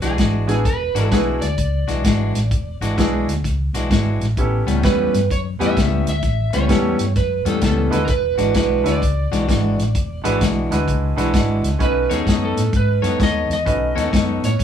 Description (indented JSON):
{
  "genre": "electric blues shuffle",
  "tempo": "129 BPM",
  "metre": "4/4",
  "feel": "swing 65% on 8ths",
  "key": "E mixolydian",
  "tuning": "A4 = 440 Hz",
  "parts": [
    { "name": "electric slide guitar", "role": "melody", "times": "0.0-14.6 s", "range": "G#4 to E5", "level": "-23 LUFS", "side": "right 3 dB", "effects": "none" },
    { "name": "clean electric guitar", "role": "riff", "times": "0.0-14.5 s", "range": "A2 to C#5", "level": "-22 LUFS", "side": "left 4 dB", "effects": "none" },
    { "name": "vintage muted fingered electric bass", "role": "bass", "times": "0.0-14.6 s", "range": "E1 to A2", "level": "-21 LUFS", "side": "equal", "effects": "none" },
    { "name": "warm soul drum kit", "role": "drums", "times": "0.0-14.6 s", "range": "hi-hat, kick drum, snare drum", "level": "-21 LUFS", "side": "equal", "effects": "none" },
    { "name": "bright baby grand piano", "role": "accompaniment", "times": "0.5-14.6 s", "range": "G#3 to B4", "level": "-24 LUFS", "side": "right 2 dB", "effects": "none" }
  ],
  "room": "light reverb",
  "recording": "band playing live in one room, small room reverb",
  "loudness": "-16 LUFS",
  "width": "side -9 dB against mid",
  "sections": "0.0-14.6 A section",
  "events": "none",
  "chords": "0.0 E9; 4.4 A9; 8.1 E9; 11.8 B9"
}